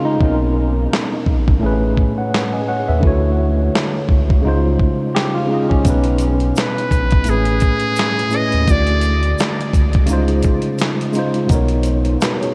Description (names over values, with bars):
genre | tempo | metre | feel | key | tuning
lo-fi hip hop | 85 BPM | 4/4 | swing 56% on 16ths | unclear | A4 = 440 Hz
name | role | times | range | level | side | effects
electric guitar at the edge of break-up | second line | 0.0-0.4, 5.1-6.0 s | C#4 to G4 | -29 LUFS | equal | low-pass filter, diffuse ambient delay
tine electric piano | accompaniment | 0.0-12.5 s | A2 to G#5 | -21 LUFS | equal | overdrive, low-pass filter
soft dub sub bass | bass | 0.2-12.2 s | A1 to D#2 | -20 LUFS | equal | none
dusty soul sampler-style drum kit | drums | 0.2-12.5 s | handclaps, hi-hat, kick drum, snare drum | -21 LUFS | equal | none
tube shaker | percussion | 5.9-12.4 s | none | -40 LUFS | equal | none
trumpet with metal mute | melody | 6.6-9.4 s | G#4 to D#5 | -25 LUFS | equal | low-pass filter, diffuse ambient delay
room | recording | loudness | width
moderate huge ambient reverb, RT60 7.2 s | dreamy mix soaked in reverb, cassette tape | -16 LUFS | mono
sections
0.0-12.5 A section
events
break 0.0-5.9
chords
0.2 Bmaj9; 1.6 Amaj9; 3.0 Dmaj9; 4.4 C#maj9; 5.9 Bmaj9; 7.3 Amaj9; 8.7 Dmaj9; 10.1 C#maj9; 11.5 Bmaj9